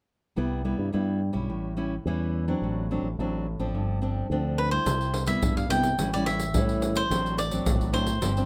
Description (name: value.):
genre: samba and choro.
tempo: 107 BPM.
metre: 4/4.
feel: straight.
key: C major.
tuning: A4 = 440 Hz.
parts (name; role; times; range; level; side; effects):
nylon-string guitar; accompaniment; 0.4-8.5 s; G2 to E4; -32 LUFS; equal; none.
fingered electric bass with an envelope filter; bass; 0.4-8.5 s; G1 to C3; -32 LUFS; equal; none.
cavaquinho; melody; 4.6-8.5 s; B4 to G5; -31 LUFS; equal; none.
egg shaker, surdo and pandeiro; percussion; 4.9-8.5 s; none; -31 LUFS; equal; none.
room: light reverb.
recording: close, detailed microphones.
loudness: -27 LUFS.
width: mono.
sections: 0.4-4.9 A section; 4.9-8.5 B section.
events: none.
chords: 0.4 Cmaj7; 1.5 A7; 2.6 D7/A; 3.7 G7sus4; 4.9 Cmaj7; 6.0 A7; 7.1 D7/A.